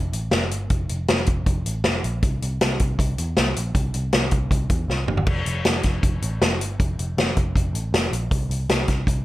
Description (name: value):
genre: jangly indie pop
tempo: 158 BPM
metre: 4/4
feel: straight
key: F major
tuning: A4 = 440 Hz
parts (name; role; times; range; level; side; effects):
- vintage muted picked electric bass; bass; 0.0-9.2 s; F1 to E2; -25 LUFS; equal; none
- vintage drum kit; drums; 0.1-9.2 s; crash cymbal, hi-hat, kick drum, snare drum, toms; -21 LUFS; equal; gated reverb
room: light reverb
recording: none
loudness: -20 LUFS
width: side -16 dB against mid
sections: 0.0-9.2 A section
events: drum fill 4.9-5.3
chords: none